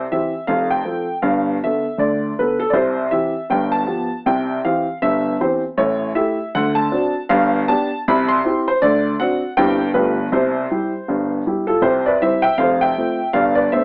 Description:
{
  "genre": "jazz, stride piano",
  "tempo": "159 BPM",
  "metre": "4/4",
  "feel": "swing 59% on 8ths",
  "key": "C major",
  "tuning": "A4 = 438 Hz",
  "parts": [
    { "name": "warm upright piano", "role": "solo", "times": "0.0-13.8 s", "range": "F1 to C6", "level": "-16 LUFS", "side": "equal", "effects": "none" }
  ],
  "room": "light reverb",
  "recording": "AM radio sound",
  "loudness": "-16 LUFS",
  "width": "side -36 dB against mid",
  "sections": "0.0-11.8 A section; 11.8-13.8 A section",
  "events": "none",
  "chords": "0.5 F; 1.2 G9; 2.7 C; 3.5 G7; 4.3 C; 5.8 A7; 6.5 D7; 7.3 G7; 8.0 C; 8.8 D7; 9.6 C/G; 9.9 G9; 10.3 C; 12.6 F; 13.3 G9",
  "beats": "0.10 0.47 0.85 | 1.23 1.61 1.99 2.37 | 2.75 3.13 3.50 3.88 | 4.26 4.64 5.02 5.40 | 5.78 6.16 6.53 6.91 | 7.29 7.67 8.05 8.43 | 8.80 9.18 9.56 9.94 | 10.32 10.70 11.07 11.45 | 11.83 12.21 12.59 12.96 | 13.34 13.72"
}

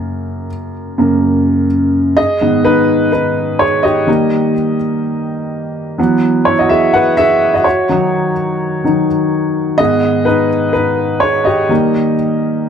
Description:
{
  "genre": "pop",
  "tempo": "126 BPM",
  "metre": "4/4",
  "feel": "swing 56% on 16ths",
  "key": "G# minor",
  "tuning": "A4 = 439 Hz",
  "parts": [
    { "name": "warm upright piano", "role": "solo", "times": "0.0-12.7 s", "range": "F#2 to F#5", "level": "-11 LUFS", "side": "equal", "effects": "tape echo" }
  ],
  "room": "moderate studio reverb, RT60 0.9 s",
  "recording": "none",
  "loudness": "-11 LUFS",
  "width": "side -7 dB against mid",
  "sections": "0.0-2.2 A section; 2.2-12.7 B section",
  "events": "upright piano solo 0.0-2.2, 2.2-12.7",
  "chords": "0.0 F#; 2.2 G#m; 4.1 D#; 6.0 Esus2; 7.7 D#m7; 9.8 G#m; 11.7 D#",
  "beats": "| 0.27 0.74 1.22 1.70 | 2.17 2.65 3.13 3.60 | 4.08 4.55 5.03 5.51 | 5.98 6.46 6.94 7.41 | 7.89 8.37 8.84 9.32 | 9.79 10.27 10.75 11.22 | 11.70 12.18 12.65"
}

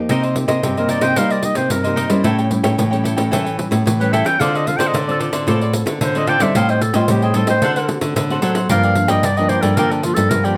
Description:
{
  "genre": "samba and choro",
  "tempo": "112 BPM",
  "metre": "4/4",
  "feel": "straight",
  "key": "unclear",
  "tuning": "A4 = 440 Hz",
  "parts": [
    { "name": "nylon-string guitar", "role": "accompaniment", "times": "0.0-10.6 s", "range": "G2 to A4", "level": "-25 LUFS", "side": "equal", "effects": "none" },
    { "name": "cavaquinho", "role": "accompaniment", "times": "0.1-10.6 s", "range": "D4 to G5", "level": "-24 LUFS", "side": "equal", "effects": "none" },
    { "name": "nylon-string guitar", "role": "bass", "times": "0.1-10.6 s", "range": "G2 to G3", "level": "-22 LUFS", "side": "equal", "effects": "none" },
    { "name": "pandeiro", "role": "percussion", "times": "0.1-10.6 s", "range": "none", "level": "-26 LUFS", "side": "equal", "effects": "none" },
    { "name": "clear clarinet", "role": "second line", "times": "0.6-10.6 s", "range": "D4 to G5", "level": "-22 LUFS", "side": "equal", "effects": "none" }
  ],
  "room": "light reverb",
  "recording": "none",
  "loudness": "-17 LUFS",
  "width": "mono",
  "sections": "0.1-10.6 A section",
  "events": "clarinet solo 0.1-10.6",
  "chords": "0.1 Cm7; 2.3 A7; 4.4 Dm7; 6.6 Am7b5; 7.6 D7; 8.7 Gm7",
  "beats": "| 0.10 0.64 1.17 1.71 | 2.25 2.79 3.33 3.87 | 4.40 4.94 5.48 6.01 | 6.55 7.09 7.63 8.16 | 8.70 9.24 9.77 10.31"
}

